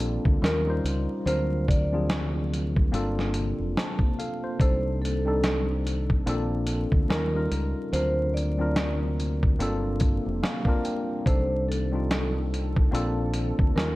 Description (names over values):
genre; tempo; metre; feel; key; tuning
lo-fi hip hop; 72 BPM; 4/4; swing 59% on 16ths; C dorian; A4 = 440 Hz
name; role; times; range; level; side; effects
tine electric piano; accompaniment; 0.0-14.0 s; E#3 to A5; -30 LUFS; left 1 dB; medium stereo tremolo, cassette tape, low-pass filter
deep dark ambient pad; sustained chords; 0.0-14.0 s; C3 to A4; -38 LUFS; right 1 dB; none
deep dub fingered electric bass; bass; 0.0-14.0 s; F1 to Eb2; -28 LUFS; equal; none
dusty soul sampler-style drum kit; drums; 0.0-14.0 s; hi-hat, kick drum, snare drum; -26 LUFS; equal; none
vibraphone with soft mallets; melody; 0.4-14.0 s; A4 to D5; -32 LUFS; right 1 dB; low-pass filter, tape echo
room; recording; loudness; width
little or no reverb; vinyl crackle; -23 LUFS; side -18 dB against mid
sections
0.0-14.0 A section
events
tine electric piano fill 10.0-11.3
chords
0.4 Eb9; 1.3 D7alt; 2.9 Gm11; 4.6 Cm69; 6.3 Bbmaj9; 7.1 Eb9; 7.9 D7alt; 9.6 Gm11; 11.3 Cm69; 12.9 Bbmaj9